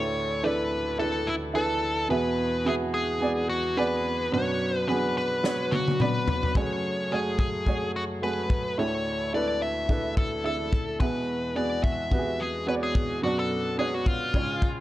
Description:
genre	piano-driven pop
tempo	108 BPM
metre	4/4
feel	swing 56% on 16ths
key	unclear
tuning	A4 = 440 Hz
part	nasal lead guitar with a parked wah	melody	0.0-14.8 s	E4 to E5	-28 LUFS	left 1 dB	overdrive
part	clear upright piano	accompaniment	0.0-14.8 s	B1 to E5	-29 LUFS	right 2 dB	none
part	bright tonewheel organ	sustained chords	0.0-14.8 s	D2 to B4	-35 LUFS	equal	slow rotary speaker
part	loose indie drum kit	drums	5.4-14.8 s	kick drum, snare drum, toms	-26 LUFS	left 1 dB	none
room	moderate large studio reverb, RT60 1.2 s, small room ambience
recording	dark, warm production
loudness	-24 LUFS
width	side -15 dB against mid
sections	0.0-14.8 A section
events	drum fill 5.4-6.6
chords	0.0 Dsus2; 2.1 Eadd9; 4.3 Bm; 6.6 F#madd9; 8.8 Dsus2; 11.0 Eadd9; 13.2 Bm

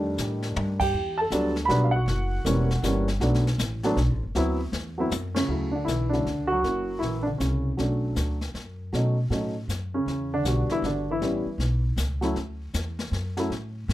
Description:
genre	jazz piano trio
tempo	157 BPM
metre	3/4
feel	swing 64% on 8ths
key	D major from 5.5 s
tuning	A4 = 438 Hz
part	dark baby grand piano	melody	0.0-13.5 s	C#3 to B5	-26 LUFS	equal	none
part	upright bass	bass	0.0-13.9 s	E1 to B2	-27 LUFS	equal	none
part	jazz brush drum kit	drums	0.2-13.9 s	brushed snare drum, crash cymbal, hi-hat, kick drum, ride cymbal, snare drum, toms	-34 LUFS	left 3 dB	none
room	light reverb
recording	none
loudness	-24 LUFS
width	side -15 dB against mid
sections	0.0-5.5 A section; 5.5-13.9 B section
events	drum fill 0.6-0.9, 5.1-5.5; band accent 0.7, 5.3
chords	0.0 F13; 0.9 Em9; 2.1 F#7b9; 3.2 Bm7; 4.4 D13; 5.5 Dmaj7; 6.6 F#7; 7.8 Bm7; 8.9 B7; 10.1 Em9; 11.2 A; 12.4 D

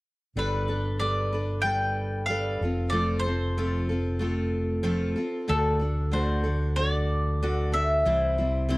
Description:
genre	rock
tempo	94 BPM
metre	4/4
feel	straight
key	G mixolydian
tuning	A4 = 440 Hz
part	mandolin	melody	0.4-8.8 s	A4 to G5	-28 LUFS	left 1 dB	none
part	picked steel-string acoustic guitar	accompaniment	0.4-8.8 s	C3 to C5	-29 LUFS	equal	none
part	fingered electric bass	bass	0.4-8.8 s	F1 to D2	-28 LUFS	equal	none
room	little or no reverb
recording	dry, close 1970s-style studio recording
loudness	-24 LUFS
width	side -21 dB against mid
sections	0.4-8.8 A section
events	none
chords	0.4 Gadd9; 2.6 F; 5.5 D; 8.1 C

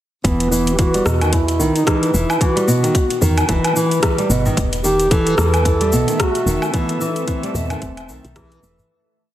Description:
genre	organic downtempo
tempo	111 BPM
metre	4/4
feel	swing 58% on 16ths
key	E harmonic minor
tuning	A4 = 440 Hz
part	dark duduk	melody	0.2-8.6 s	B3 to A4	-21 LUFS	right 1 dB	tape echo
part	nylon-string guitar	arpeggios	0.2-8.9 s	B2 to G3	-19 LUFS	equal	low-pass filter, tape echo
part	woody FM bass	bass	0.2-8.8 s	E1 to E2	-20 LUFS	equal	none
part	deep house drum kit	drums	0.2-8.9 s	hi-hat, rim click, shaker, woodblock	-22 LUFS	left 1 dB	overdrive
part	electronic kick drum	drums	0.2-8.5 s	none	-19 LUFS	equal	none
part	udu	percussion	3.2-8.9 s	none	-26 LUFS	left 1 dB	none
part	ethereal airy pad	sustained chords	5.6-8.9 s	A3 to E5	-29 LUFS	left 1 dB	ensemble chorus, built-in reverb, phaser, sidechain pumping
room	light reverb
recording	heavily compressed radio sound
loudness	-14 LUFS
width	side -13 dB against mid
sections	0.2-8.9 groove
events	filter sweep on nylon-string guitar 0.2-8.9; fade-out 6.0-8.9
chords	0.2 Emadd9; 4.6 Am/E

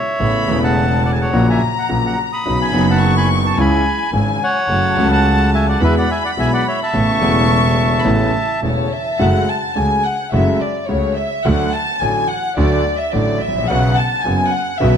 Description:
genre	tango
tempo	107 BPM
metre	4/4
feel	rubato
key	A major, F# minor from 9.2 s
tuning	A4 = 440 Hz
part	bandoneon	melody	0.0-8.6 s	B4 to D#6	-19 LUFS	right 1 dB	none
part	warm chamber violin section	second line	0.2-15.0 s	C#5 to C#6	-20 LUFS	left 2 dB	none
part	clear concert grand piano	accompaniment	0.2-15.0 s	E1 to F#4	-18 LUFS	left 1 dB	none
part	clear double bass	bass	0.2-15.0 s	E1 to E2	-19 LUFS	right 1 dB	none
room	moderate large studio reverb, RT60 1.4 s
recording	dark, warm production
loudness	-14 LUFS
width	side -8 dB against mid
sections	0.0-9.2 A section; 9.2-15.0 B section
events	violin section solo 9.2-15.0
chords	0.2 Aadd9; 1.3 F#/A#; 2.5 Badd9; 3.6 C#m; 4.7 F#m; 5.8 Eadd9; 6.9 Aadd9; 9.2 F#madd9; 11.4 D; 13.7 Bsus2

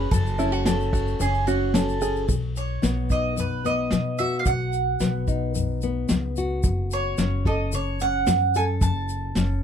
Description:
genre	acoustic folk duo or small band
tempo	110 BPM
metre	4/4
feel	straight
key	unclear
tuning	A4 = 440 Hz
part	mandolin	second line	0.0-9.6 s	F#4 to A5	-27 LUFS	right 3 dB	none
part	nylon-string guitar	accompaniment	0.0-9.6 s	F#2 to A4	-27 LUFS	left 4 dB	none
part	open-back banjo	arpeggios	0.0-2.3 s	A3 to G#4	-28 LUFS	right 8 dB	none
part	upright bass	bass	0.0-9.6 s	F#1 to B2	-26 LUFS	equal	none
part	vintage brush drum kit	drums	0.1-9.5 s	hi-hat, kick drum, ride cymbal, snare drum	-26 LUFS	equal	none
part	tube shaker	percussion	0.1-9.5 s	none	-38 LUFS	left 6 dB	none
room	light reverb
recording	close, detailed microphones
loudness	-21 LUFS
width	side -8 dB against mid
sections	0.0-2.3 A section; 2.3-9.6 B section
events	mandolin solo 2.3-9.6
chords	0.0 F#madd9; 2.3 B; 6.6 F#m

